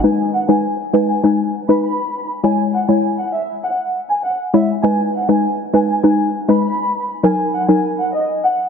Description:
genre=dancehall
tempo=100 BPM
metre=4/4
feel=straight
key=G# minor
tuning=A4 = 438 Hz
part: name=warm studio violin section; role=melody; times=0.0-8.5 s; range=D#5 to B5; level=-20 LUFS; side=equal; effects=ping-pong delay
part: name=mallet-like synth pluck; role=accompaniment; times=0.0-7.9 s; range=F#3 to C#5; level=-15 LUFS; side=left 1 dB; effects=chorus, phaser
part: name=picked steel-string acoustic guitar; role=arpeggios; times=0.0-0.6 s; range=D#3 to D#4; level=-28 LUFS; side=right 7 dB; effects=none
room=moderate lush hall reverb, RT60 2.1 s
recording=heavily compressed radio sound, low-pass filter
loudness=-14 LUFS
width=side -6 dB against mid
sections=0.0-8.7 A section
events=filter sweep 0.0-8.7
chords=0.0 G#m; 2.4 C#m; 4.8 G#m; 7.2 D#m

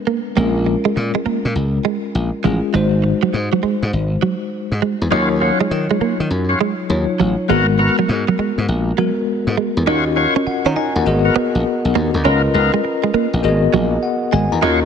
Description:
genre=R&B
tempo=101 BPM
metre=4/4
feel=swing 65% on 16ths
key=unclear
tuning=A4 = 437 Hz
part: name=bell-like tine electric piano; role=accompaniment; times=0.0-14.9 s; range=Gb3 to Bb5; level=-19 LUFS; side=left 3 dB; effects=medium stereo tremolo
part: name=direct-recorded clean electric guitar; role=riff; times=0.1-14.7 s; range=F3 to Eb4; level=-21 LUFS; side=right 9 dB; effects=analog chorus
part: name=slap bass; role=bass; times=0.4-14.9 s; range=Ab1 to Eb3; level=-18 LUFS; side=left 1 dB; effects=none
part: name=tonewheel organ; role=stabs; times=5.1-14.8 s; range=Cb4 to Db5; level=-22 LUFS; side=left 2 dB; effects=overdrive, slow rotary speaker, tape echo
room=light reverb, digital ambience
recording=none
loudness=-15 LUFS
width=side -7 dB against mid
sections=0.4-9.9 A section; 9.9-14.9 B section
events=break 0.0-0.4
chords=0.4 Bbm7; 2.7 Ab7; 5.1 Ebm9; 7.5 Abm9; 9.9 Ebm9; 11.1 Abm9; 12.2 Db13; 13.4 Abm9

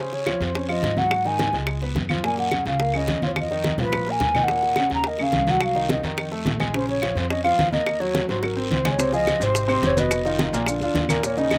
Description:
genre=Afro-Cuban jazz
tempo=213 BPM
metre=4/4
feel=straight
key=Bb minor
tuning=A4 = 438 Hz
part: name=mellow hollow jazz flute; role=melody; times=0.0-11.6 s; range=Bb4 to Bb5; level=-26 LUFS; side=equal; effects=slapback echo
part: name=warm upright piano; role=accompaniment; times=0.0-11.6 s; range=Bb2 to Db5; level=-29 LUFS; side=equal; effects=none
part: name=bongos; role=percussion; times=0.1-11.6 s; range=none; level=-33 LUFS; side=equal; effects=slapback echo
part: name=congas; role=percussion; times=0.1-11.6 s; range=none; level=-31 LUFS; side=equal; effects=none
part: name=claves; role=percussion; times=0.3-11.6 s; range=none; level=-34 LUFS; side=equal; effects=none
part: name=guiro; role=percussion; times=0.3-11.6 s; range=none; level=-36 LUFS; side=equal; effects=slapback echo
part: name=upright bass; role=bass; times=0.4-11.6 s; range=F1 to Ab2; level=-32 LUFS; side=equal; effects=none
part: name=maracas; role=percussion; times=9.0-11.6 s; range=none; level=-36 LUFS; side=equal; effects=none
room=little or no reverb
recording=recorded outdoors, with no room sound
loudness=-23 LUFS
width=mono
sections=0.0-9.0 A section; 9.0-11.6 B section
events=drum fill 3.4-4.5, 8.4-9.0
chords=0.0 Ebm13; 1.1 Ab5; 1.7 Db7; 2.2 Gb6; 3.4 Bb5; 4.5 Ebm9; 5.6 Cdim; 6.2 F7; 6.7 Bbmadd11; 7.9 Ebm7; 8.4 Ab9; 9.0 Dbmaj9; 10.1 Bmaj7#11/E#; 10.7 Bb

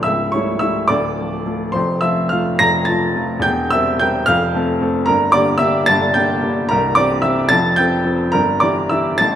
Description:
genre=classical, romantic character piece for solo piano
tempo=72 BPM (dotted quarters)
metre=6/8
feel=uneven beats, rubato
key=unclear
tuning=A4 = 439 Hz
part: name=clear upright piano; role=solo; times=0.0-9.4 s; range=C1 to Bb6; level=-14 LUFS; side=equal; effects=none
room=moderate recital hall reverb, RT60 1.8 s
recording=none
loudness=-14 LUFS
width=side -10 dB against mid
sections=0.0-9.4 A section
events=none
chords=0.1 A7/C#; 0.9 Dm; 1.8 F; 3.4 C7/E; 4.3 F; 5.1 Gm; 6.7 C7; 7.5 F; 8.3 Edim/G

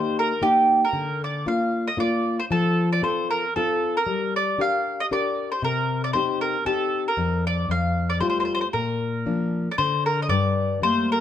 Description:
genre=italian folk, Italian serenade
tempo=116 BPM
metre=3/4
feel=swing 55% on 8ths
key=Bb major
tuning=A4 = 437 Hz
part: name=mandolin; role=melody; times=0.0-11.2 s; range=G4 to F5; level=-23 LUFS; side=equal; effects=none
part: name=nylon-string guitar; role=accompaniment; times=0.0-11.2 s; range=F2 to Bb4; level=-24 LUFS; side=left 2 dB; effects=none
room=moderate recital hall reverb, RT60 1.4 s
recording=close, detailed microphones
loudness=-21 LUFS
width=side -10 dB against mid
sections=0.0-10.3 A section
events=none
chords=0.0 Eb; 0.9 Bb/D; 2.5 F; 4.1 Gm; 5.6 Cm; 7.2 N.C.; 7.7 Fadd9; 8.7 Bb; 9.8 N.C.; 10.3 Gmadd9

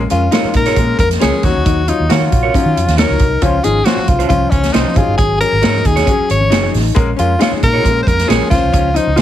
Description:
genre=uptempo 1960s-style soul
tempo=136 BPM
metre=4/4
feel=straight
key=Db major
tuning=A4 = 440 Hz
part: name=vintage hollow-body jazz guitar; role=riff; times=0.0-9.2 s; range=Bb3 to Ab4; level=-22 LUFS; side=left 10 dB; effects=none
part: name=vintage muted fingered electric bass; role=bass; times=0.0-9.2 s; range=Gb1 to Eb3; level=-17 LUFS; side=right 1 dB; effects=none
part: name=bright tenor saxophone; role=melody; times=0.1-9.2 s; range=Db4 to Db5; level=-17 LUFS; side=left 1 dB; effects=none
part: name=warm upright piano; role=accompaniment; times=0.1-9.2 s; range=F3 to Db5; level=-22 LUFS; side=left 4 dB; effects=none
part: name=swinging big-band drum kit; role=drums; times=0.1-9.2 s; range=hi-hat, kick drum, snare drum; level=-16 LUFS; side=right 1 dB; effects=none
part: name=congas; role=percussion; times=0.1-9.2 s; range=none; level=-28 LUFS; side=right 2 dB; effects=none
part: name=electric guitar through a small old amp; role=stabs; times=0.3-9.2 s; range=Db4 to Db5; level=-21 LUFS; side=right 9 dB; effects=none
room=small room ambience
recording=heavily compressed radio sound, multiband compression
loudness=-11 LUFS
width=side -11 dB against mid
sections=0.0-9.2 A section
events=none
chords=0.0 Bbm7; 1.4 Ebm7; 3.4 Dbmaj7; 5.0 Ab7sus4; 7.0 Bbm7; 8.5 Dbmaj7

